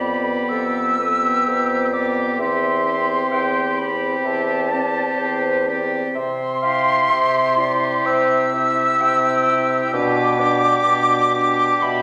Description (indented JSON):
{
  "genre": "classical, slow romantic movement for wind quintet",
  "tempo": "63 BPM",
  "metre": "4/4",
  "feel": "rubato",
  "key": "C major",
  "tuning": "A4 = 437 Hz",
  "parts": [
    { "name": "bright concert flute", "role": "melody", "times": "0.0-12.0 s", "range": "A5 to E6", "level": "-22 LUFS", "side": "equal", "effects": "none" },
    { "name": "bright oboe", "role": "second line", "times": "0.0-12.0 s", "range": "G4", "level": "-27 LUFS", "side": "equal", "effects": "none" },
    { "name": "warm French horn", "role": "accompaniment", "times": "0.0-12.0 s", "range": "B3 to E4", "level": "-28 LUFS", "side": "equal", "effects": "none" },
    { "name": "warm clarinet", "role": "accompaniment", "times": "0.0-12.0 s", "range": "A4 to G5", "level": "-29 LUFS", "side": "equal", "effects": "none" },
    { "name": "warm bassoon", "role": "bass", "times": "0.0-12.0 s", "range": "E2 to C3", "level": "-26 LUFS", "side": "equal", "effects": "none" }
  ],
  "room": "wet recital hall reverb, RT60 1.4 s",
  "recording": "none",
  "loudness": "-19 LUFS",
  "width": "mono",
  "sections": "0.0-12.0 A section",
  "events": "none",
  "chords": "0.0 G7/F; 2.4 C/E; 6.2 C; 9.9 G/B",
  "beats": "0.51 1.48 | 2.41 3.34 4.27 5.22 | 6.17 7.13 8.07 9.02 | 9.94 10.88 11.85"
}